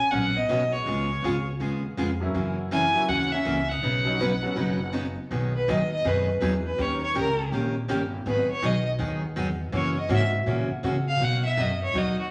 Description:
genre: country, western swing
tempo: 162 BPM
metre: 4/4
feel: swing 65% on 8ths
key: B major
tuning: A4 = 440 Hz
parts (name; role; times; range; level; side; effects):
- clear fiddle; melody; 0.0-12.3 s; F#4 to G#5; -29 LUFS; equal; none
- hollow-body jazz guitar; second line; 0.0-4.9 s; G#3 to E4; -35 LUFS; equal; none
- picked steel-string acoustic guitar; accompaniment; 0.1-12.2 s; B2 to B4; -30 LUFS; equal; none
- upright bass; bass; 0.1-12.3 s; F#1 to C#3; -32 LUFS; equal; none
- bright upright piano; accompaniment; 2.2-4.6 s; F#3 to F#4; -34 LUFS; equal; none
room: wet large studio reverb, RT60 1.3 s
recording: none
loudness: -26 LUFS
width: mono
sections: 0.0-5.3 A section; 5.3-12.3 B section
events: fiddle solo 5.3-12.3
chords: 0.0 Bsus2; 0.9 C#7; 2.3 F#7; 3.8 Badd9; 5.3 B6; 6.8 D#7; 8.3 G#m7; 9.7 F#7; 11.2 Bmaj7

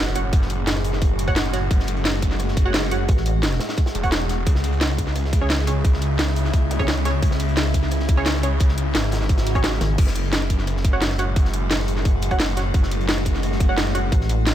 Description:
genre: dark technical drum and bass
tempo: 174 BPM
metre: 4/4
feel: straight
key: F# minor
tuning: A4 = 440 Hz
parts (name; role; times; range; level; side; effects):
- metallic inharmonic drone; sustained chords; 0.0-14.5 s; A2 to F#4; -28 LUFS; left 1 dB; chorus, built-in reverb, sidechain pumping
- snarling distorted saw bass; bass; 0.0-14.1 s; E1 to C#2; -23 LUFS; equal; distortion, overdrive
- sub drop, zap and swell; sound effects; 0.0-0.3, 6.7-6.8, 9.4-10.0 s; none; -33 LUFS; right 4 dB; none
- crunchy breakbeat drum kit; drums; 0.1-14.5 s; hi-hat, snare drum; -35 LUFS; equal; none
- drum and bass drum kit; drums; 0.1-14.5 s; crash cymbal, hi-hat, rim click, snare drum; -25 LUFS; equal; none
- filtered dub chord stab; stabs; 0.2-14.0 s; C#4 to F#5; -29 LUFS; right 3 dB; chorus, cassette tape, ping-pong delay
- electronic kick drum; drums; 0.3-14.2 s; none; -19 LUFS; equal; none
- pulsing pluck wobble bass; bass; 3.1-3.6, 9.8-10.0, 14.1-14.5 s; G#1 to A1; -20 LUFS; equal; chorus
room: little or no reverb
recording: none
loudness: -18 LUFS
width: side -11 dB against mid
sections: 0.0-14.5 A section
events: impact 0.0-0.3; swell 9.4-10.0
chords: 0.0 F#madd9; 4.5 C#m; 10.0 F#madd9

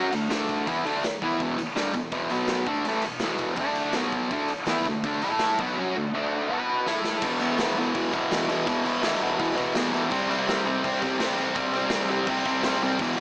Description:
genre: garage rock duo or trio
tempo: 165 BPM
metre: 4/4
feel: straight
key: unclear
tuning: A4 = 439 Hz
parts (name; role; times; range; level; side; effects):
- fuzz guitar; riff; 0.0-13.2 s; E2 to B4; -24 LUFS; equal; distortion
- tambourine; percussion; 0.0-13.2 s; none; -45 LUFS; equal; none
- raw garage drum kit; drums; 0.1-13.2 s; crash cymbal, kick drum, ride cymbal, snare drum; -30 LUFS; equal; none
room: light reverb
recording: small speaker sound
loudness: -23 LUFS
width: side -24 dB against mid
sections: 0.0-7.2 A section; 7.2-13.2 B section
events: drum fill 6.9-7.2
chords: 0.0 D5; 1.4 E5; 2.3 B5; 2.7 E5; 3.6 D5; 3.9 B5; 4.3 D5; 5.2 A5; 5.6 D5; 6.5 B5; 6.9 A5; 7.2 E5; 10.1 C5

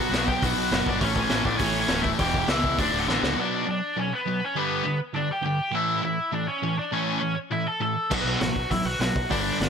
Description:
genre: punk rock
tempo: 203 BPM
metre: 4/4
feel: straight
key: unclear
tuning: A4 = 440 Hz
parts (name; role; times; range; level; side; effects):
- overdriven electric guitar; melody; 0.0-9.7 s; B3 to A5; -27 LUFS; left 1 dB; ping-pong delay
- distorted electric guitar; riff; 0.0-9.7 s; D2 to B3; -29 LUFS; left 14 dB; overdrive
- sludgy distorted guitar; riff; 0.0-9.7 s; D2 to B3; -29 LUFS; right 11 dB; overdrive
- growling fingered electric bass; bass; 0.0-3.3, 8.1-9.7 s; D1 to C#2; -32 LUFS; equal; overdrive
- raw garage drum kit; drums; 0.1-3.3, 8.1-9.7 s; crash cymbal, hi-hat, kick drum, snare drum; -27 LUFS; equal; none
room: little or no reverb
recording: none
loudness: -22 LUFS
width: side -6 dB against mid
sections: 0.0-3.4 A section; 3.4-9.7 B section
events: drum fill 3.1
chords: 0.0 Bm; 1.0 A; 2.2 Em; 2.8 D; 3.4 Bm; 4.6 G; 5.7 A; 8.1 B5

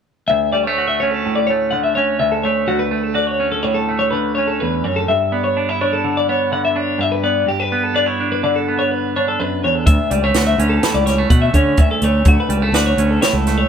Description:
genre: math rock and midwest emo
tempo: 125 BPM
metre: 5/4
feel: straight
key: D major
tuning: A4 = 438 Hz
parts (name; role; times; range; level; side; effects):
- clean electric guitar; accompaniment; 0.3-13.7 s; D2 to F#4; -20 LUFS; right 4 dB; none
- twelve-string electric guitar; arpeggios; 0.3-13.7 s; F#4 to F#5; -18 LUFS; left 3 dB; none
- growling fingered electric bass; bass; 9.9-13.6 s; C#2 to D3; -17 LUFS; equal; overdrive
- compact cocktail drum kit; drums; 9.9-13.6 s; hi-hat, kick drum, snare drum; -15 LUFS; equal; none
room: light reverb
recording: band playing live in one room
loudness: -14 LUFS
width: side -7 dB against mid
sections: 0.3-13.7 A section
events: none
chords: 0.3 Dmaj9; 5.1 G69; 9.9 Dmaj9

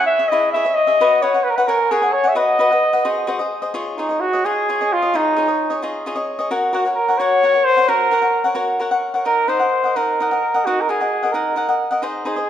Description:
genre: mexican folk, mariachi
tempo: 87 BPM (dotted quarters)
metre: 6/8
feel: straight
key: Db major from 3.7 s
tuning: A4 = 440 Hz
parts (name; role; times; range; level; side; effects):
- mellow trumpet; melody; 0.0-12.5 s; Eb4 to E5; -17 LUFS; equal; none
- cavaquinho; accompaniment; 0.0-12.5 s; Eb4 to G#5; -20 LUFS; left 1 dB; none
room: wet recital hall reverb, RT60 1.7 s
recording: dark, warm production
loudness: -15 LUFS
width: side -10 dB against mid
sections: 0.0-3.7 A section; 3.7-12.5 B section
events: none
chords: 0.0 C#m; 1.0 F#sus4; 1.7 F#add9; 2.3 B; 3.0 G#7; 3.7 Dbadd9; 6.5 Gb; 9.3 Ebm

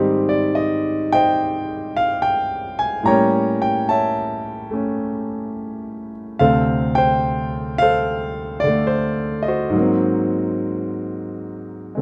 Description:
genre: solo jazz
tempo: 72 BPM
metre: 4/4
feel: swing 68% on 8ths, rubato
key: unclear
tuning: A4 = 440 Hz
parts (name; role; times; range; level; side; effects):
- clear concert grand piano; solo; 0.0-12.0 s; D2 to Bb5; -20 LUFS; equal; none
room: light reverb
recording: none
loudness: -20 LUFS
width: mono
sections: 0.0-12.0 A section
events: none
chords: 0.0 Abmaj7; 3.1 A7b9; 6.4 Dm7; 9.7 Ab9

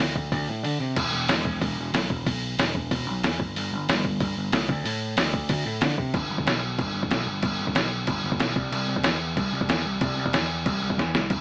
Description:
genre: punk rock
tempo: 186 BPM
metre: 4/4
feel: straight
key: G major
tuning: A4 = 440 Hz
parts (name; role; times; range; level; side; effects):
- overdriven picked electric bass; bass; 0.0-11.4 s; E1 to D3; -28 LUFS; equal; none
- lo-fi sampler-style drum kit; drums; 0.0-11.4 s; crash cymbal, hi-hat, kick drum, snare drum; -24 LUFS; equal; none
room: moderate studio reverb, RT60 0.7 s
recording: band playing live in one room, small speaker sound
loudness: -23 LUFS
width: side -25 dB against mid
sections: 0.0-6.1 A section; 6.1-11.3 B section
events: kick and snare drop out 0.6-1.0; drum fill 11.0-11.3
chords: none

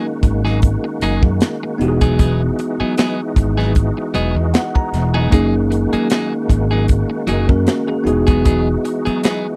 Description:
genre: lush 1970s-style soul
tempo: 77 BPM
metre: 4/4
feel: swing 54% on 16ths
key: F# mixolydian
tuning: A4 = 442 Hz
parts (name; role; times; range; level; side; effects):
- bell-like tine electric piano; accompaniment; 0.0-9.6 s; A#3 to A#5; -22 LUFS; equal; none
- overdriven tonewheel organ; sustained chords; 0.0-9.6 s; D#3 to F#4; -28 LUFS; equal; slow rotary speaker, chorus vibrato
- clean electric guitar; riff; 0.0-9.5 s; F#3 to G#4; -24 LUFS; equal; none
- overdriven fingered electric bass; bass; 0.2-9.1 s; E1 to F#2; -20 LUFS; equal; none
- tight funk drum kit; drums; 0.2-9.4 s; hi-hat, kick drum, snare drum; -17 LUFS; equal; none
room: little or no reverb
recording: dry, close 1970s-style studio recording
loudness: -17 LUFS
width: mono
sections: 0.0-9.6 A section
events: tine electric piano fill 3.8-5.3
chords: 0.0 F#69; 1.8 Emaj9; 5.3 F#69; 8.1 Emaj9

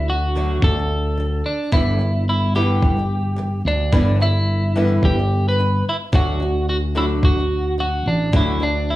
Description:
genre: acoustic pop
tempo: 109 BPM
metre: 4/4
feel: swing 55% on 16ths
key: G major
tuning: A4 = 441 Hz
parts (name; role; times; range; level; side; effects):
- twelve-string electric guitar; melody; 0.0-9.0 s; D4 to B4; -23 LUFS; right 1 dB; none
- flamenco guitar; accompaniment; 0.0-8.8 s; G2 to F#4; -24 LUFS; equal; none
- fretless electric bass; bass; 0.0-9.0 s; G1 to D2; -20 LUFS; equal; none
- electronic kick drum; drums; 0.6-8.5 s; none; -18 LUFS; equal; overdrive
room: moderate large studio reverb, RT60 0.9 s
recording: band playing live in one room, small room ambience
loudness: -16 LUFS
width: side -16 dB against mid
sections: 0.0-9.0 A section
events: none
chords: 0.0 D; 1.7 G6; 6.1 D

